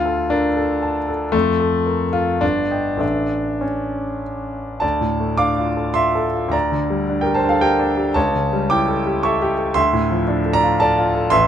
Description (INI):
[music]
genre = classical, romantic character piece for solo piano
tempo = 97-119 BPM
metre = 3/4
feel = rubato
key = D minor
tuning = A4 = 440 Hz
[part]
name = clear concert grand piano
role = solo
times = 0.0-11.5 s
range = G1 to D6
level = -16 LUFS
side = equal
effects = none
[sound]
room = light reverb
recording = close, detailed microphones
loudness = -17 LUFS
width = side -9 dB against mid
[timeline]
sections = 0.0-4.8 A section; 4.8-11.5 B section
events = none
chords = 0.0 Dm; 1.3 Fadd11; 2.4 Eb/G; 3.0 A; 4.8 Dm; 6.5 Gm/D; 8.2 A7/C#; 9.8 Dm